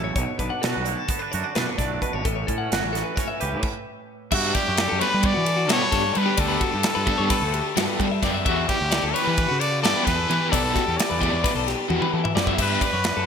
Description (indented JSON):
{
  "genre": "math rock and midwest emo",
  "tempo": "262 BPM (eighths)",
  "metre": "9/8",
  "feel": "straight",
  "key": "G lydian",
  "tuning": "A4 = 441 Hz",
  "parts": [
    { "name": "twangy electric guitar", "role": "accompaniment", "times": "0.0-5.7 s", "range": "F#2 to G4", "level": "-31 LUFS", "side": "right 8 dB", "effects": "analog chorus" },
    { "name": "clean electric guitar", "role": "arpeggios", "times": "0.0-13.3 s", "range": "F#4 to F#5", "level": "-28 LUFS", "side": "left 6 dB", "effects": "none" },
    { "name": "fuzz fingered electric bass", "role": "bass", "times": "0.0-13.3 s", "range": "G1 to G3", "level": "-27 LUFS", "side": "equal", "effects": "overdrive" },
    { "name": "modern studio drum kit", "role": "drums", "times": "0.2-13.1 s", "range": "crash cymbal, hi-hat, kick drum, ride cymbal, snare drum, toms", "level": "-25 LUFS", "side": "equal", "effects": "gated reverb" },
    { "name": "bright trumpet", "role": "melody", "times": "4.3-13.3 s", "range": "F#4 to D5", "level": "-25 LUFS", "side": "equal", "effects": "none" },
    { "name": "crunchy overdriven guitar", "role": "riff", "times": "4.3-12.9 s", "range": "E3 to G4", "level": "-28 LUFS", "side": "equal", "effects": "tremolo" }
  ],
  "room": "moderate lush hall reverb, RT60 2.0 s, small room ambience",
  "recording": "bright 1980s-style digital production",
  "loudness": "-20 LUFS",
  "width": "side -7 dB against mid",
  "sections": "0.0-4.3 A section; 4.3-13.3 B section",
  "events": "stop 3.6-4.3; drum fill 11.9-12.6",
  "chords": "0.2 Bm7; 2.2 A7; 4.3 Gmaj9; 8.5 Em11; 12.6 Gmaj9"
}